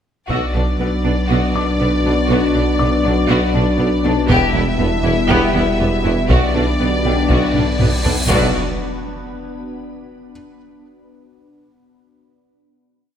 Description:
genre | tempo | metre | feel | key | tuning
cinematic, hybrid orchestral and electronic film score | 120 BPM | 4/4 | straight | B minor | A4 = 441 Hz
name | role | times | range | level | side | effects
clear symphonic violin section | melody | 0.3-8.6 s | D5 to E5 | -24 LUFS | left 3 dB | none
clear studio violin section | second line | 0.3-8.6 s | B3 to G4 | -24 LUFS | left 3 dB | none
rich chamber viola section | accompaniment | 0.3-8.6 s | B3 | -26 LUFS | right 2 dB | none
glassy FM pad | sustained chords | 0.7-8.6 s | B3 to B4 | -24 LUFS | left 3 dB | ensemble chorus, built-in reverb, phaser
mellow French horn section | sustained chords | 0.3-8.5 s | B3 to E4 | -23 LUFS | left 3 dB | none
warm trombone section | sustained chords | 0.3-8.5 s | B2 to G3 | -26 LUFS | right 2 dB | none
clear studio cello section | bass | 0.3-8.6 s | E2 to B2 | -24 LUFS | right 3 dB | none
clear tuba | bass | 0.3-8.5 s | E1 to B1 | -25 LUFS | right 3 dB | none
rich studio double bass section | bass | 0.3-8.6 s | E1 to B1 | -24 LUFS | right 2 dB | none
saturated sub bass | bass | 0.3-8.6 s | E1 to B1 | -22 LUFS | equal | none
taiko ensemble | drums | 0.3-1.3, 4.3-9.3 s | none | -21 LUFS | equal | none
felt-muted upright piano | texture | 0.3-8.3 s | G4 to E6 | -31 LUFS | left 3 dB | ping-pong delay
cymbal swell and impact | sound effects | 7.5-10.3 s | none | -26 LUFS | equal | none
room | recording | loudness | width
moderate scoring stage reverb, RT60 1.5 s | none | -14 LUFS | side -9 dB against mid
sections
0.3-8.3 theme; 8.3-10.3 final chord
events
cymbal swell 7.5-8.3; drum fill 7.5-8.3; impact 8.3-10.3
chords
0.3 Bm; 4.3 Em; 6.3 Bm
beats
| 0.30 0.80 1.30 1.80 | 2.30 2.80 3.30 3.80 | 4.30 4.80 5.30 5.80 | 6.30 6.80 7.30 7.80 | 8.30 8.80 9.30 9.80

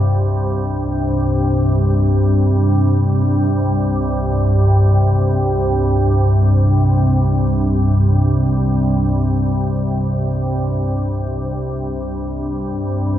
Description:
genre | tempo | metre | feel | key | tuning
world meditative, free-time meditation music | free time | none | none | unclear | A4 = 440 Hz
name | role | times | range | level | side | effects
organ-like drone | drone | 0.0-13.2 s | C2 to G2 | -14 LUFS | equal | ensemble chorus, built-in reverb
kora | texture | 0.0-5.4 s | F4 | -41 LUFS | right 1 dB | none
room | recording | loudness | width
wet huge ambient reverb, RT60 6.2 s | dark, warm production | -14 LUFS | side -11 dB against mid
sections
0.0-13.2 A section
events
none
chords
none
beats
free time

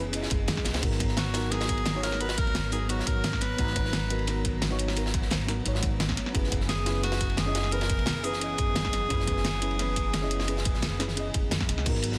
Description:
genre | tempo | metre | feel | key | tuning
liquid drum and bass | 174 BPM | 4/4 | straight | unclear | A4 = 440 Hz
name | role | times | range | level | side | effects
warm analog pad | sustained chords | 0.0-12.2 s | E3 to A#5 | -41 LUFS | equal | chorus
upright bass | bass | 0.0-12.2 s | F#1 to F#2 | -34 LUFS | equal | none
mellow FM electric piano | accompaniment | 0.1-12.2 s | B3 to A#5 | -37 LUFS | equal | chorus, digital delay
crunchy breakbeat drum kit | drums | 0.1-12.2 s | ride cymbal, snare drum | -38 LUFS | equal | high-pass filter on cymbals, small room reverb, high-pass filter on snare, high-pass filter on room
pop drum kit | drums | 0.1-12.1 s | crash cymbal, hi-hat, snare drum | -34 LUFS | equal | small room reverb
swell | sound effects | 0.4-0.8 s | none | -43 LUFS | equal | none
electronic kick drum | drums | 0.3-11.9 s | none | -33 LUFS | equal | small room reverb
clear tenor saxophone | melody | 1.2-4.4, 6.7-11.5 s | F#4 to B4 | -35 LUFS | equal | digital delay
room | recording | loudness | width
light reverb, studio reverb | dense, heavily limited modern master | -28 LUFS | mono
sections
0.0-11.9 A section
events
drop 0.0-11.9; swell 0.4-0.8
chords
0.0 F#9sus4; 0.8 G#m9; 6.3 F#9sus4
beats
0.14 0.48 | 0.83 1.17 1.52 1.86 | 2.21 2.55 2.90 3.24 | 3.59 3.93 4.28 4.62 | 4.97 5.31 5.66 6.00 | 6.34 6.69 7.04 7.38 | 7.72 8.07 8.41 8.76 | 9.10 9.45 9.79 10.14 | 10.48 10.83 11.17 11.52 | 11.86

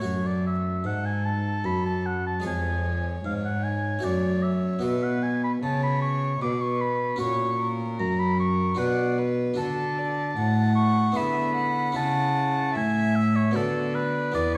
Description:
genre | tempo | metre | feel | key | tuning
classical, baroque-style sonata movement with continuo | 76 BPM | 3/4 | straight | F# minor, A major from 9.6 s | A4 = 437 Hz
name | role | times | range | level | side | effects
warm oboe | second line | 0.0-14.6 s | A4 to D6 | -31 LUFS | equal | none
harpsichord | accompaniment | 0.0-14.6 s | E2 to D5 | -31 LUFS | equal | none
rich cello | bass | 0.0-14.6 s | E2 to D3 | -30 LUFS | equal | none
rich violin | melody | 0.8-14.6 s | A4 to F#5 | -36 LUFS | equal | none
room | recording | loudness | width
wet recital hall reverb, RT60 1.5 s | dark, warm production, vinyl crackle | -25 LUFS | mono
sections
0.1-14.6 A section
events
none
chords
0.1 F#m; 2.5 C#/E#; 4.0 F#m; 4.8 Bm; 7.2 F#/A#; 8.8 Bm; 9.6 D; 11.2 E7/D; 12.0 A/C#; 13.6 Bm7/D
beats
| 0.05 0.85 1.65 | 2.45 3.25 4.04 | 4.83 5.63 6.42 | 7.21 8.00 8.79 | 9.59 10.38 11.17 | 11.97 12.77 13.56 | 14.36

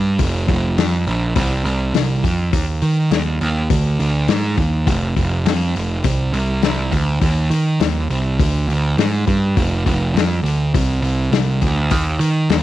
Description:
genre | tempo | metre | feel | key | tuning
blues rock power trio and southern rock | 102 BPM | 4/4 | straight | C minor | A4 = 440 Hz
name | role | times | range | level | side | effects
fuzz picked electric bass | bass | 0.0-12.6 s | F1 to Eb3 | -17 LUFS | right 2 dB | overdrive
vintage drum kit | drums | 0.2-12.6 s | hi-hat, kick drum, snare drum | -20 LUFS | left 3 dB | none
room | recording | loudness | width
little or no reverb | 1960s-style stereo | -15 LUFS | side -14 dB against mid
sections
0.0-12.6 A section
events
none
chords
none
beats
| 0.19 0.78 1.36 1.95 | 2.53 3.12 3.70 4.29 | 4.87 5.46 6.04 6.63 | 7.22 7.80 8.39 8.98 | 9.56 10.15 10.74 11.32 | 11.91 12.50

